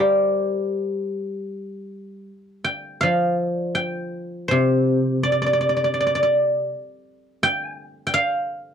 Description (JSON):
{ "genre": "chinese traditional, Chinese solo plucked strings", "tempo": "76-87 BPM", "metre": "4/4", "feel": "rubato", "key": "G yu mode", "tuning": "A4 = 440 Hz", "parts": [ { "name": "guzheng", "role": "solo", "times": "0.0-8.7 s", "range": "C3 to C6", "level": "-20 LUFS", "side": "equal", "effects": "none" } ], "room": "little or no reverb", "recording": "dry, close 1970s-style studio recording", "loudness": "-20 LUFS", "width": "side -8 dB against mid", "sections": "0.0-1.5 A section; 1.5-8.7 B section", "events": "none", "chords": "none", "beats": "0.76 | 1.54 2.30 3.04 3.78 | 4.52 5.25 5.98 6.70 | 7.43 8.13" }